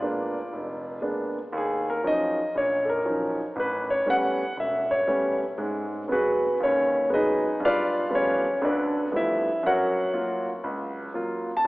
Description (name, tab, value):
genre	solo jazz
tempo	119 BPM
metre	4/4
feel	swing 66% on 8ths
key	Eb minor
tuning	A4 = 440 Hz
part	warm grand piano	solo	0.0-11.7 s	E1 to A5	-23 LUFS	equal	none
room	wet church reverb, RT60 3.6 s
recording	recorded in a church or concert hall, telephone sound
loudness	-23 LUFS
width	side -20 dB against mid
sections	0.0-1.5 A section; 1.5-11.7 B section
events	grand piano solo 1.5-11.7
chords	0.0 Bb7b9; 1.5 Ebm9; 3.6 A9; 5.6 Abm7; 7.6 G9; 9.6 Gbmaj7